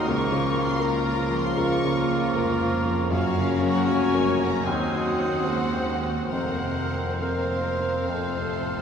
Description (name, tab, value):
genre	classical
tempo	67-82 BPM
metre	4/4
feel	rubato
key	Bb minor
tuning	A4 = 440 Hz
part	clear symphonic violin section	melody	0.0-8.8 s	F5 to Db6	-34 LUFS	left 2 dB	none
part	warm grand piano	melody	0.0-8.8 s	Db2 to C5	-27 LUFS	left 1 dB	none
part	bright wooden flute	second line	0.0-8.8 s	Db6 to F6	-34 LUFS	equal	none
part	clear clarinet	second line	0.0-8.8 s	Bb3 to Db4	-34 LUFS	left 4 dB	none
part	warm oboe	second line	0.0-8.8 s	Bb4 to C5	-34 LUFS	right 2 dB	none
part	warm symphonic violin section	second line	0.0-8.8 s	F4 to Db5	-34 LUFS	left 2 dB	none
part	dark bassoon	accompaniment	0.0-8.8 s	F3 to Bb3	-34 LUFS	right 1 dB	none
part	rich symphonic viola section	accompaniment	0.0-8.8 s	Bb3 to F4	-33 LUFS	right 2 dB	none
part	dark symphonic cello section	bass	0.0-8.8 s	Db2 to Gb2	-34 LUFS	right 1 dB	none
part	rich symphonic double bass section	bass	0.0-8.8 s	F1 to Eb2	-34 LUFS	right 2 dB	none
part	dark French horn section	sustained chords	0.1-8.8 s	F3 to C4	-32 LUFS	equal	none
part	timpani	percussion	8.1-8.8 s	F2	-40 LUFS	left 3 dB	none
room	wet cathedral reverb, RT60 4.6 s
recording	recorded in a church or concert hall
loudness	-22 LUFS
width	side -7 dB against mid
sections	0.0-8.8 A section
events	timpani fill 8.1-8.8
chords	0.1 Bbm/Db; 3.1 Gbmaj7; 4.6 Cdim/Eb; 6.3 Fsus4; 8.1 F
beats	| 0.09 0.82 1.57 2.35 | 3.10 3.86 4.64 5.46 | 6.31 7.21 8.09